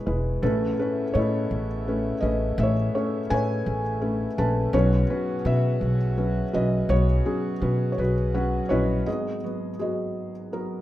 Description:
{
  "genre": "acoustic folk-pop ballad",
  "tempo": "55 BPM (dotted quarters)",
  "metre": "6/8",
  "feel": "straight",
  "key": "unclear",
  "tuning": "A4 = 440 Hz",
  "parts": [
    { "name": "felt-muted upright piano", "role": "melody", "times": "0.0-10.8 s", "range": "G#1 to A5", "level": "-25 LUFS", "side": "left 1 dB", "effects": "slapback echo" },
    { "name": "upright bass", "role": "bass", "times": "0.1-9.0 s", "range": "E1 to B2", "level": "-25 LUFS", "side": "equal", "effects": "none" },
    { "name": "pedal harmonium", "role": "sustained chords", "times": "0.4-9.0 s", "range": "C#3 to F#4", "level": "-36 LUFS", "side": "equal", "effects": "plate reverb" }
  ],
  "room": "moderate small room reverb, RT60 0.5 s",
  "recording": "rough home demo mix",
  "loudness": "-22 LUFS",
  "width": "side -14 dB against mid",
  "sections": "0.0-9.1 A section; 9.1-10.8 B section",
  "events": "felt piano fill 8.0-9.1",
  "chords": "0.4 Aadd9; 4.7 Bsus2; 9.1 G#m7",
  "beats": "| 0.42 1.50 | 2.59 3.66 | 4.74 5.82 | 6.90 7.98 | 9.07 10.17"
}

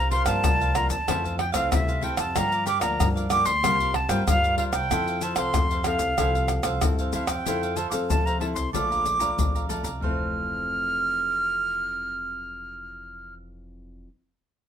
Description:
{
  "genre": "samba and choro",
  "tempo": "94 BPM",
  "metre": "4/4",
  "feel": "straight",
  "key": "F major",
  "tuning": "A4 = 439 Hz",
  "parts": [
    { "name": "breathy bright concert flute", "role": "melody", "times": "0.0-13.3 s", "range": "E5 to F6", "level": "-26 LUFS", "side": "right 1 dB", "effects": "none" },
    { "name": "cavaquinho", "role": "accompaniment", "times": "0.0-14.1 s", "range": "E4 to Bb5", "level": "-32 LUFS", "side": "right 4 dB", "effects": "none" },
    { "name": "nylon-string guitar", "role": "accompaniment", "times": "0.0-14.1 s", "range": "F2 to A4", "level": "-32 LUFS", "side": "left 4 dB", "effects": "none" },
    { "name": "upright bass", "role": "bass", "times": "0.0-14.0 s", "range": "F1 to F3", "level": "-32 LUFS", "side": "equal", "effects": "none" },
    { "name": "pandeiro, tube shaker, tamborim and surdo", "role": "percussion", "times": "0.1-10.2 s", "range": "none", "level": "-26 LUFS", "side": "left 1 dB", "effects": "none" }
  ],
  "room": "moderate small room reverb, RT60 0.5 s",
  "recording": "minimal, uncompressed stereo recording",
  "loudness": "-22 LUFS",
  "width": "side -9 dB against mid",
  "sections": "0.0-7.5 A section; 7.5-10.0 B section; 10.0-12.6 C section",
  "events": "none",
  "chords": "0.0 C9sus4; 1.1 Fmaj7; 2.4 Gm7; 3.6 C7sus4; 4.9 Fmaj7; 8.7 Bbmaj7; 10.0 Fmaj7",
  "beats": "0.45 1.09 1.73 | 2.36 3.00 3.64 4.28 | 4.91 5.55 6.19 6.83 | 7.46 8.10 8.74 9.38 | 10.02 10.66 11.30 11.94"
}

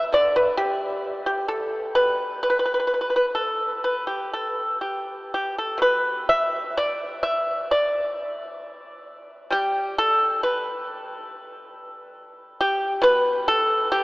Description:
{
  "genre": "chinese traditional, Chinese solo plucked strings",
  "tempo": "61-70 BPM",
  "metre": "4/4",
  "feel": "rubato",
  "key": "unclear",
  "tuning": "A4 = 439 Hz",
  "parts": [
    { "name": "pipa", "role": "solo", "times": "0.0-14.0 s", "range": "B2 to E5", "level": "-21 LUFS", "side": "equal", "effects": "none" }
  ],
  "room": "wet cathedral reverb, RT60 6.3 s",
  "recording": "recorded in a church or concert hall, AM radio sound",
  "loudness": "-21 LUFS",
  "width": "side -22 dB against mid",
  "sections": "0.0-5.8 A section; 5.8-14.0 B section",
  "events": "none",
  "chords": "none",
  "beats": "0.14 1.04 | 1.96 2.90 3.84 4.81 | 5.79 6.74 7.70 8.63 | 9.52 10.42 11.30 12.16 | 13.03 13.91"
}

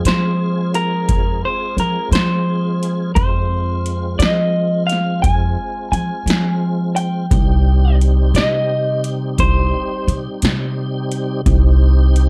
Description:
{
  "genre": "slow blues",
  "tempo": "58 BPM (dotted quarters)",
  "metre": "12/8",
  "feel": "straight",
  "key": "unclear",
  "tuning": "A4 = 440 Hz",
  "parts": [
    { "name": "tonewheel organ", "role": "sustained chords", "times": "0.0-12.3 s", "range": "G3 to Ab4", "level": "-29 LUFS", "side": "equal", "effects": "slow rotary speaker, overdrive, chorus vibrato" },
    { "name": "electric guitar through a small old amp", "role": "melody", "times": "0.1-10.1 s", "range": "Bb4 to Ab5", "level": "-24 LUFS", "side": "equal", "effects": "none" },
    { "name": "upright bass", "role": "bass", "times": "0.1-12.3 s", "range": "C2 to F3", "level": "-19 LUFS", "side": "equal", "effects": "none" },
    { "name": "electro analog drum machine", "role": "drums", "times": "0.1-12.3 s", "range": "hi-hat, kick drum, snare drum", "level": "-22 LUFS", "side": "equal", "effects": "overdrive" }
  ],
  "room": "little or no reverb",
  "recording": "dark, warm production",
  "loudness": "-17 LUFS",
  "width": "mono",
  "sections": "0.0-12.3 A section",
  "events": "none",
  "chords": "0.0 Fm; 7.3 Cm",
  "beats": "0.06 1.09 2.12 | 3.16 4.19 5.23 6.26 | 7.30 8.34 9.38 10.41 | 11.45"
}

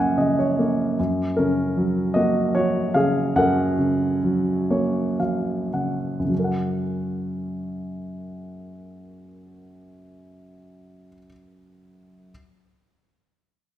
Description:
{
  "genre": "classical, lyrical solo piano",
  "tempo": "49-78 BPM",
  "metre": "3/4",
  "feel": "rubato",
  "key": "F# major",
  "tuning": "A4 = 440 Hz",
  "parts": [
    { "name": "warm grand piano", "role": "solo", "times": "0.0-12.3 s", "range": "F#2 to G#5", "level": "-21 LUFS", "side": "equal", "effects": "none" }
  ],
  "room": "moderate scoring stage reverb, RT60 1.8 s",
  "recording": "minimal, uncompressed stereo recording",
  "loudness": "-20 LUFS",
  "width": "side -12 dB against mid",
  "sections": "1.0-6.3 A section; 6.3-9.8 B section",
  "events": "grand piano fill 0.0-1.0, 4.2-6.3; slowing down 1.0-6.3",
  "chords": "0.0 F#",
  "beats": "0.17 | 0.98 1.77 2.55 | 3.36 4.23 5.20 | 6.32 7.50 8.64"
}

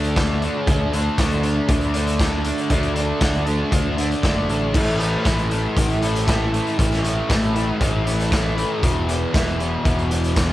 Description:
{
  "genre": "rock, shoegaze and dream pop",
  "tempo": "118 BPM",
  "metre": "4/4",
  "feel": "straight",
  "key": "unclear",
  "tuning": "A4 = 440 Hz",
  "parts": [
    { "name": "fuzz guitar", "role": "riff", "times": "0.0-10.5 s", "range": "E2 to D4", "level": "-21 LUFS", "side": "equal", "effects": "distortion, lush chorus, cassette tape" },
    { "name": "modern bright picked electric bass", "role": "bass", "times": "0.0-10.5 s", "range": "E1 to D2", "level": "-24 LUFS", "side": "equal", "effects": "none" },
    { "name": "raw garage drum kit", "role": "drums", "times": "0.0-10.5 s", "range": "crash cymbal, hi-hat, kick drum, snare drum", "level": "-22 LUFS", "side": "equal", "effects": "cassette tape" }
  ],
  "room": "little or no reverb",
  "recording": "home recording on cassette",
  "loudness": "-18 LUFS",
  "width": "side -15 dB against mid",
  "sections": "0.0-10.5 A section",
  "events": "none",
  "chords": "0.0 D5; 4.7 A5; 8.8 E5",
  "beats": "0.16 | 0.67 1.18 1.69 2.20 | 2.71 3.22 3.73 4.24 | 4.75 5.26 5.77 6.28 | 6.79 7.30 7.81 8.32 | 8.83 9.34 9.85 10.37"
}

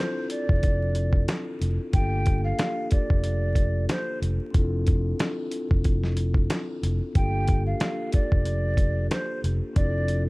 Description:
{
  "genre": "hip hop, boom-bap hip-hop",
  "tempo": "92 BPM",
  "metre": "4/4",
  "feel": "swing 55% on 16ths",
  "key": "G dorian",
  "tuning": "A4 = 440 Hz",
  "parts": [
    { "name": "mellow hollow jazz flute", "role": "melody", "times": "0.0-10.2 s", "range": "C5 to G5", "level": "-31 LUFS", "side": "right 1 dB", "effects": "high-pass filter, low-pass filter, slapback echo" },
    { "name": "vibraphone with soft mallets", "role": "accompaniment", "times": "0.0-10.3 s", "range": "Bb3 to A4", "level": "-32 LUFS", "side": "left 2 dB", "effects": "cassette tape, high-pass filter, low-pass filter" },
    { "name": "dusty soul sampler-style drum kit", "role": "drums", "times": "0.3-10.3 s", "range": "hi-hat, kick drum, snare drum", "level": "-23 LUFS", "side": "equal", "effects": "none" },
    { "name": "fingered electric bass", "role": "bass", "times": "0.5-10.3 s", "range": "F1 to G1", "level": "-25 LUFS", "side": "equal", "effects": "none" }
  ],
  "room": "small room reverb",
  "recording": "vinyl crackle",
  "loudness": "-22 LUFS",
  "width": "side -23 dB against mid",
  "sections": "0.0-10.3 A section",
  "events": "none",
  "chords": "0.0 Dm9/F; 1.9 Gm7; 4.5 Dm9/F; 7.2 Gm7; 9.8 Dm9/F",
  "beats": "0.63 1.28 | 1.94 2.59 3.24 3.89 | 4.55 5.20 5.85 6.50 | 7.15 7.81 8.46 9.11 | 9.76"
}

